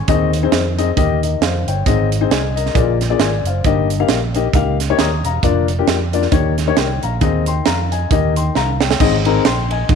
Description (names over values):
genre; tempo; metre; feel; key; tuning
uptempo gospel; 135 BPM; 4/4; swing 58% on 8ths; Ab major; A4 = 439 Hz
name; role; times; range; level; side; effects
dark upright piano; accompaniment; 0.0-10.0 s; G2 to Eb6; -18 LUFS; left 12 dB; none
fingered electric bass; bass; 0.1-10.0 s; Fb1 to F2; -19 LUFS; right 2 dB; none
crisp fusion drum kit; drums; 0.1-10.0 s; crash cymbal, hi-hat, kick drum, ride cymbal, snare drum; -19 LUFS; right 6 dB; none
room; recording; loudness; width
light reverb, small room ambience; 1960s-style stereo with parts hard left and right; -14 LUFS; side -6 dB against mid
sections
0.0-9.0 A section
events
drum fill 8.6-9.0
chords
0.1 Ab/Eb; 1.0 Eb; 1.9 Ab; 2.8 Bb7; 3.6 Eb/G; 5.4 Bb/F; 6.3 Eb7; 7.2 Ab/Eb; 8.1 Eb; 9.0 Ab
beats
| 0.08 0.53 0.97 1.42 | 1.86 2.31 2.75 3.20 | 3.65 4.09 4.54 4.99 | 5.43 5.88 6.32 6.77 | 7.22 7.66 8.11 8.55 | 9.00 9.44 9.89